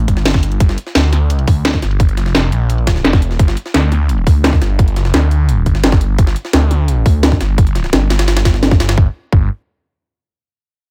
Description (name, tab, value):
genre	dark technical drum and bass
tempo	172 BPM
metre	4/4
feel	straight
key	G minor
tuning	A4 = 440 Hz
part	phased detuned saw bass	bass	0.0-9.5 s	F1 to D2	-16 LUFS	equal	phaser, overdrive
part	drum and bass drum kit	drums	0.1-9.0 s	hi-hat, snare drum	-17 LUFS	equal	overdrive, low-pass filter on snare, low-pass filter on hats, low-pass filter on cymbals
part	electronic kick drum	drums	0.1-9.4 s	none	-14 LUFS	equal	overdrive
part	jungle sampler-style drum kit	drums	0.1-9.0 s	hi-hat, snare drum	-25 LUFS	equal	high-pass filter on snare, high-pass filter on hats
room	little or no reverb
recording	none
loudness	-13 LUFS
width	mono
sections	0.0-9.0 A section; 9.0-10.4 B section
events	filter sweep on drum 0.0-9.0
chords	none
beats	0.25 | 0.60 0.95 1.30 1.65 | 2.00 2.35 2.70 3.04 | 3.39 3.74 4.09 4.44 | 4.79 5.14 5.49 5.84 | 6.18 6.53 6.88 7.23 | 7.58 7.93 8.28 8.63 | 8.97 9.32